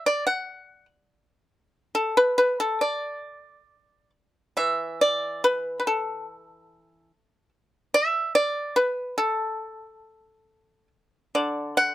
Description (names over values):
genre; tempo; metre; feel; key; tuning
chinese traditional, Chinese solo plucked strings; 70 BPM; 2/4; uneven beats, rubato; D gong mode; A4 = 440 Hz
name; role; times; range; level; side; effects
pipa; solo; 0.0-11.9 s; D3 to F#5; -22 LUFS; equal; none
room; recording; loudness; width
light reverb; close, detailed microphones; -22 LUFS; side -14 dB against mid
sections
0.0-4.6 A section; 4.6-11.9 B section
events
none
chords
none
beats
0.29 | 1.11 1.96 | 2.83 3.71 | 4.59 5.45 | 6.29 7.11 | 7.95 8.78 | 9.62 10.48 | 11.36